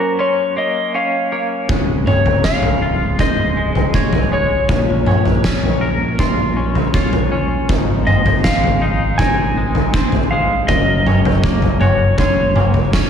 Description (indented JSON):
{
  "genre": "post-rock",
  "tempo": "80 BPM",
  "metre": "4/4",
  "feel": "straight",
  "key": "unclear",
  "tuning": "A4 = 440 Hz",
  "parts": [
    { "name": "clean lap steel guitar", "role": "melody", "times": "0.0-12.9 s", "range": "Bb4 to Ab5", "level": "-20 LUFS", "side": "left 2 dB", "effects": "slapback echo" },
    { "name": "pedal steel guitar", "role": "sustained chords", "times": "0.0-13.1 s", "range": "C3 to F5", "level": "-29 LUFS", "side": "right 1 dB", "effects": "none" },
    { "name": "electric guitar through a small old amp", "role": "arpeggios", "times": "0.0-13.1 s", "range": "Db4 to C6", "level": "-27 LUFS", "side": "right 3 dB", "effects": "slapback echo" },
    { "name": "twangy electric guitar", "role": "arpeggios", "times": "0.0-13.1 s", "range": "Db2 to Bb4", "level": "-24 LUFS", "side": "left 2 dB", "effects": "tremolo, slapback echo" },
    { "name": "growling fingered electric bass", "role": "bass", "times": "1.7-13.1 s", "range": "Db1 to Bb1", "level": "-22 LUFS", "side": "right 1 dB", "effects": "overdrive" },
    { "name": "oversized low-tuned drum kit", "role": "drums", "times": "1.7-13.1 s", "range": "kick drum, snare drum, toms", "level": "-16 LUFS", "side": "equal", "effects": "none" }
  ],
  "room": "moderate lush hall reverb, RT60 2.1 s",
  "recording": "big arena sound",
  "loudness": "-13 LUFS",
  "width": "side -8 dB against mid",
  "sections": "0.0-13.1 A section",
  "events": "none",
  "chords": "0.0 Gbmaj7; 1.7 Dbmaj7; 4.7 Bbm7; 7.7 Fm7/Ab; 10.7 Gb",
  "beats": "0.19 0.94 | 1.69 2.44 3.19 3.94 | 4.69 5.44 6.19 6.95 | 7.70 8.45 9.20 9.94 | 10.69 11.44 12.19 12.94"
}